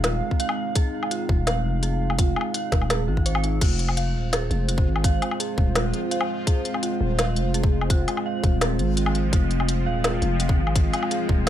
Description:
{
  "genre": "half-time drum and bass",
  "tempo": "168 BPM",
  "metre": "4/4",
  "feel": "half-time",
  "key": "unclear",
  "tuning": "A4 = 441 Hz",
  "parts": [
    { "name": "dark analog pad", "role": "sustained chords", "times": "0.0-11.5 s", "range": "Ab3 to F5", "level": "-28 LUFS", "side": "right 2 dB", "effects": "chorus, sidechain pumping" },
    { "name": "dark detuned synth bell", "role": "arpeggios", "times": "0.0-11.5 s", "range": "Eb4 to F5", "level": "-31 LUFS", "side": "right 1 dB", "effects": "chorus, phaser, dub echo" },
    { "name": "growling 808-style bass", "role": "bass", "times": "0.0-11.5 s", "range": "Eb1 to Ab1", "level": "-24 LUFS", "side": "equal", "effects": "none" },
    { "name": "organic electronic drum kit", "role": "drums", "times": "0.0-11.5 s", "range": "crash cymbal, hi-hat, snare drum, woodblock", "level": "-26 LUFS", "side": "left 2 dB", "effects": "studio reverb" },
    { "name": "electronic kick drum", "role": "drums", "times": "0.3-11.4 s", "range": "none", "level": "-21 LUFS", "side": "equal", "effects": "overdrive, studio reverb" },
    { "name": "backwards swelling texture", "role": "texture", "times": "4.9-11.5 s", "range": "F3 to F4", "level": "-35 LUFS", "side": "equal", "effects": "built-in reverb" }
  ],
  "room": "little or no reverb",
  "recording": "none",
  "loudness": "-20 LUFS",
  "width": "side -11 dB against mid",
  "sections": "0.0-3.6 A section; 3.6-11.5 A section",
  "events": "drop 0.0-3.6, 3.6-11.5",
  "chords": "0.0 Fm",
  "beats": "0.04 0.40 | 0.76 1.11 1.47 1.83 | 2.19 2.54 2.90 3.26 | 3.61 3.97 4.33 4.68 | 5.04 5.40 5.76 6.11 | 6.47 6.83 7.18 7.54 | 7.90 8.26 8.61 8.97 | 9.33 9.69 10.04 10.40 | 10.76 11.11 11.47"
}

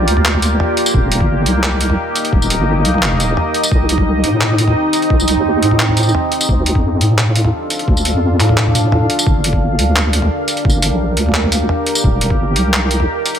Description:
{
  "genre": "half-time drum and bass",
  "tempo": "173 BPM",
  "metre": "4/4",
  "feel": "half-time",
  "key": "G minor",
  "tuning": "A4 = 440 Hz",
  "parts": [
    { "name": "deep dark ambient pad", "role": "sustained chords", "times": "0.0-13.4 s", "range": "Bb3 to G5", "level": "-17 LUFS", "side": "equal", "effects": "chorus, built-in reverb, sidechain pumping" },
    { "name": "deep soft wobble bass", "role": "bass", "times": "0.0-13.1 s", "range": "Eb1 to A2", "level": "-15 LUFS", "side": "equal", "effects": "chorus" },
    { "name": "boom bap sampler-style drum kit", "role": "drums", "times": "0.1-13.4 s", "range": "handclaps, hi-hat, tambourine, toms", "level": "-18 LUFS", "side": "equal", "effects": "none" },
    { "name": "electronic kick drum", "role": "drums", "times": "0.9-12.4 s", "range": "none", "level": "-16 LUFS", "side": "equal", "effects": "none" }
  ],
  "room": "light reverb",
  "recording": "none",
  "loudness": "-12 LUFS",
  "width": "side -9 dB against mid",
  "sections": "0.0-13.4 A section",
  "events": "none",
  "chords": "0.0 Gm7; 0.9 Eb; 3.7 Cm; 6.5 Dm; 9.3 Gm7; 12.0 Eb",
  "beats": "0.25 0.59 | 0.94 1.29 1.64 1.98 | 2.33 2.67 3.02 3.37 | 3.72 4.06 4.41 4.76 | 5.10 5.45 5.80 6.14 | 6.49 6.84 7.18 7.53 | 7.88 8.22 8.57 8.92 | 9.27 9.61 9.96 10.30 | 10.65 11.00 11.35 11.69 | 12.04 12.39 12.73 13.08"
}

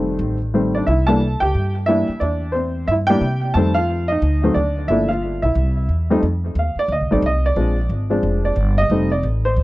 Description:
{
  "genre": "jazz piano trio",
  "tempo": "179 BPM",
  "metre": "4/4",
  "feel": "swing 61% on 8ths",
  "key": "unclear",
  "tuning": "A4 = 436 Hz",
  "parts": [
    { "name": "warm upright piano", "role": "melody", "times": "0.0-9.6 s", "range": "F2 to A5", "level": "-19 LUFS", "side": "equal", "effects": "tape echo" },
    { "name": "upright bass", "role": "bass", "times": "0.0-9.6 s", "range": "F1 to C3", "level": "-20 LUFS", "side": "equal", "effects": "none" }
  ],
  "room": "little or no reverb",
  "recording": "dry, close 1970s-style studio recording",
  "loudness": "-16 LUFS",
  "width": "side -18 dB against mid",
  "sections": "0.0-6.2 A section; 6.2-9.6 B section",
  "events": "upright piano solo 6.2-9.6",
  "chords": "0.0 F7; 0.9 C; 3.6 F7; 4.2 D5; 4.9 Gm7; 5.6 C; 6.2 F7(no3); 7.6 Bb7; 8.9 F7",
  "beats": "0.20 0.54 | 0.87 1.21 1.54 1.88 | 2.21 2.55 2.88 3.22 | 3.55 3.88 4.22 4.55 | 4.89 5.22 5.56 5.89 | 6.23 6.56 6.90 7.23 | 7.57 7.90 8.23 8.57 | 8.90 9.24 9.57"
}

